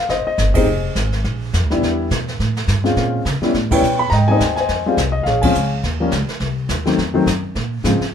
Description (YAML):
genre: jazz piano trio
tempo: 209 BPM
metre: 4/4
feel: swing 59% on 8ths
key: unclear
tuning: A4 = 441 Hz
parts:
  - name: warm grand piano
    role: melody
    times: 0.0-8.0 s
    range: Db3 to B5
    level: -17 LUFS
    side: left 2 dB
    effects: none
  - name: upright bass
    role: bass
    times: 0.1-8.0 s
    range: F1 to Db3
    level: -20 LUFS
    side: right 1 dB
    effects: none
  - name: jazz brush drum kit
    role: drums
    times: 0.1-8.1 s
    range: brushed snare drum, hi-hat, kick drum, ride cymbal, snare drum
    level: -24 LUFS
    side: right 2 dB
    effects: none
room: moderate club reverb, RT60 0.6 s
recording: minimal, uncompressed stereo recording, lossy compression artefacts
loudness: -15 LUFS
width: side -8 dB against mid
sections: 0.0-8.1 A section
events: band accent 0.5, 3.7, 5.4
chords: 0.0 Ab; 0.7 Fm7; 1.2 Bb; 1.8 Cmaj7 (rootless); 3.0 Bbm7; 3.5 A9; 4.1 Abmaj7; 4.7 Fm7; 5.3 Bbm7; 5.8 Eb7(no3); 6.4 Cm; 7.0 F5; 7.6 Bbm7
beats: 0.10 0.39 | 0.67 0.96 1.25 1.54 | 1.82 2.11 2.40 2.69 | 2.97 3.26 3.55 3.83 | 4.12 4.41 4.69 4.98 | 5.27 5.55 5.84 6.13 | 6.41 6.70 6.99 7.27 | 7.56 7.84 8.13